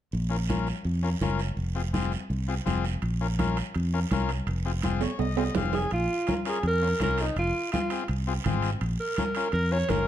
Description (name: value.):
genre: latin, cumbia.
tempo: 166 BPM.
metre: 4/4.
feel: straight.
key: Bb minor.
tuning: A4 = 437 Hz.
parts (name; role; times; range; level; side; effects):
fingered electric bass; bass; 0.1-10.1 s; F1 to F2; -28 LUFS; equal; none.
congas; percussion; 0.1-10.1 s; none; -32 LUFS; equal; none.
guiro; percussion; 0.1-10.1 s; none; -41 LUFS; right 9 dB; none.
combo organ; accompaniment; 0.3-10.1 s; C4 to Ab5; -33 LUFS; left 7 dB; none.
timbales; percussion; 3.0-10.1 s; none; -33 LUFS; right 8 dB; none.
clear alto saxophone; melody; 5.7-10.1 s; Eb4 to Db5; -28 LUFS; right 1 dB; plate reverb.
room: moderate large studio reverb, RT60 0.8 s.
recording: dark, warm production.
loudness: -25 LUFS.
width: side -11 dB against mid.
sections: 0.1-5.9 A section; 5.9-10.1 B section.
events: transistor combo organ fill 4.8-5.9; drum fill 5.0-5.9.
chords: 0.1 Bbm; 1.6 Fm; 3.0 Bbm; 4.5 Fm; 5.9 Bbm; 7.4 Fm; 8.8 Bbm.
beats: | 0.13 0.49 0.85 1.21 | 1.58 1.94 2.30 2.66 | 3.02 3.39 3.75 4.11 | 4.47 4.83 5.20 5.56 | 5.92 6.28 6.64 7.00 | 7.37 7.73 8.09 8.45 | 8.81 9.17 9.53 9.90.